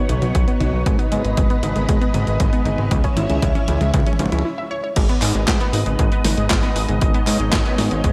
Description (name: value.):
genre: italo disco.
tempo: 117 BPM.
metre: 4/4.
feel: straight.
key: G# minor.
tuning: A4 = 444 Hz.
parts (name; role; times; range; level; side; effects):
string machine, full ensemble; sustained chords; 0.0-8.1 s; G#3 to F#5; -27 LUFS; equal; ensemble chorus.
unison pluck; arpeggios; 0.0-8.1 s; F#3 to E5; -29 LUFS; equal; cassette tape, delay.
fat analog bass; bass; 0.1-8.1 s; G#1 to G#2; -24 LUFS; equal; none.
gated 80s digital drum machine; drums; 0.1-8.1 s; crash cymbal, handclaps, hi-hat, snare drum, toms; -27 LUFS; equal; gated reverb, gated reverb snare, overdrive.
electronic kick drum; drums; 0.3-8.1 s; none; -22 LUFS; equal; none.
room: light reverb.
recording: none.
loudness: -19 LUFS.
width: mono.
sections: 0.0-5.0 A section; 5.0-8.1 B section.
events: drum fill 0.0-4.5; filter sweep on synth arpeggio sound 0.0-5.0; break 4.5-5.0.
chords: 0.0 B; 0.9 G#m; 2.9 C#m; 5.0 G#m.